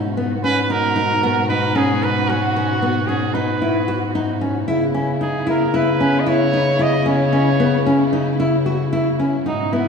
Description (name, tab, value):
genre	contemporary instrumental, chamber music in an uneven meter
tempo	226 BPM (eighths)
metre	9/8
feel	straight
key	C# dorian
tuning	A4 = 440 Hz
part	warm symphonic string section	sustained chords	0.0-9.9 s	A#2 to F#4	-25 LUFS	equal	none
part	nylon-string guitar	arpeggios	0.0-9.9 s	B3 to F#4	-20 LUFS	left 1 dB	none
part	mellow bass clarinet	bass	0.0-9.9 s	G#2 to C#3	-22 LUFS	left 2 dB	none
part	clear trumpet	melody	0.4-9.9 s	D#4 to D#5	-22 LUFS	right 3 dB	none
room	wet church reverb, RT60 3.5 s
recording	recorded in a church or concert hall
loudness	-16 LUFS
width	side -6 dB against mid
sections	0.0-9.9 A section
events	none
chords	0.0 G#m7; 4.7 C#m7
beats	0.17 0.44 0.70 0.97 1.23 1.50 1.76 2.03 | 2.29 2.56 2.82 3.09 3.35 3.62 3.88 4.15 4.41 | 4.68 4.94 5.21 5.47 5.74 6.00 6.27 6.54 6.80 | 7.07 7.33 7.60 7.86 8.13 8.39 8.66 8.92 9.19 | 9.46 9.72